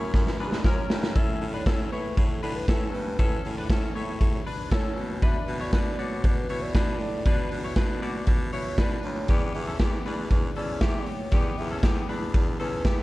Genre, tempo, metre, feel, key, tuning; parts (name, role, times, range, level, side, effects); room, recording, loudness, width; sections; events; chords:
jangly indie pop; 118 BPM; 4/4; straight; B minor; A4 = 440 Hz
hollow clarinet-like synth lead; melody; 0.0-13.0 s; G4 to E5; -36 LUFS; right 1 dB; chorus, plate reverb, analog delay
clean electric guitar; arpeggios; 0.0-13.0 s; B3 to D5; -35 LUFS; left 4 dB; analog chorus, plate reverb, analog delay
raspy baritone saxophone; bass; 0.0-13.0 s; D2 to B2; -33 LUFS; equal
raw garage drum kit; drums; 0.1-13.0 s; hi-hat, kick drum, ride cymbal, snare drum; -24 LUFS; equal
little or no reverb; dark, warm production; -23 LUFS; side -19 dB against mid
0.0-13.0 A section
drum fill 0.1-1.2
0.0 F#; 1.2 Aadd9; 5.0 Bmadd9; 9.3 Em7